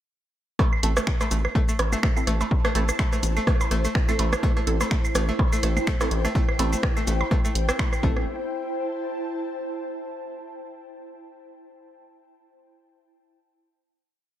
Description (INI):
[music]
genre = minimal techno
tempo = 125 BPM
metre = 4/4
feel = swing 56% on 16ths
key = A minor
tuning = A4 = 440 Hz
[part]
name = string-like resonator pluck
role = riff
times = 0.6-8.3 s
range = A3 to C4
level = -31 LUFS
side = equal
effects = chorus, sidechain pumping, tape echo
[part]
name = electronic kick drum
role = drums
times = 0.6-8.1 s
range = none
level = -23 LUFS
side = equal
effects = none
[part]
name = electronic rim click, percussion blips and claves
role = percussion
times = 0.6-8.2 s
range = none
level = -28 LUFS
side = right 2 dB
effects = none
[part]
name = ethereal airy pad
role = texture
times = 1.9-10.2 s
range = E4 to A5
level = -32 LUFS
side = equal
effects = ensemble chorus, built-in reverb, sidechain pumping
[part]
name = filtered dub chord stab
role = stabs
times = 0.8-8.2 s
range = C4 to A4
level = -33 LUFS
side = right 3 dB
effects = phaser, ensemble chorus, tape echo
[part]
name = rubbery square bass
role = bass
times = 0.8-8.3 s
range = A1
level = -24 LUFS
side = equal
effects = sidechain pumping
[part]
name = techno drum kit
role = drums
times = 0.8-8.0 s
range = cabasa, finger snaps, hi-hat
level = -31 LUFS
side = equal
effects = none
[sound]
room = light reverb, digital ambience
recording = none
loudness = -21 LUFS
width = side -12 dB against mid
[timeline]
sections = 0.6-8.3 drop; 8.3-10.2 final note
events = drop 0.6-8.3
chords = 0.6 Am